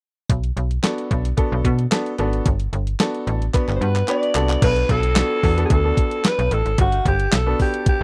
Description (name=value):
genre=early-eighties boogie funk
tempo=111 BPM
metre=4/4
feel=straight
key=unclear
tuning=A4 = 440 Hz
part: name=slap-like FM bass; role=bass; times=0.3-8.0 s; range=G1 to B2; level=-23 LUFS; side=equal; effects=none
part: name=clean 12-bit digital drum machine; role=drums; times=0.3-8.0 s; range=crash cymbal, handclaps, hi-hat, kick drum, snare drum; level=-22 LUFS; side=equal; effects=none
part: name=clear concert grand piano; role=accompaniment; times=0.8-8.0 s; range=B3 to A5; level=-27 LUFS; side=equal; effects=none
part: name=growling alto saxophone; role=melody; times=3.8-8.0 s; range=F#4 to D5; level=-24 LUFS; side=equal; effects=slapback echo
room=little or no reverb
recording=dry, close 1970s-style studio recording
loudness=-20 LUFS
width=mono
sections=0.3-4.6 A section; 4.6-8.0 B section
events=drum fill 3.5-4.6; grand piano fill 3.5-4.6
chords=0.3 Bm7; 2.5 Gmaj9; 4.6 Bm7; 6.8 Gmaj9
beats=| 0.29 0.83 1.38 1.92 | 2.46 3.00 3.54 4.08 | 4.62 5.16 5.70 6.24 | 6.78 7.32 7.86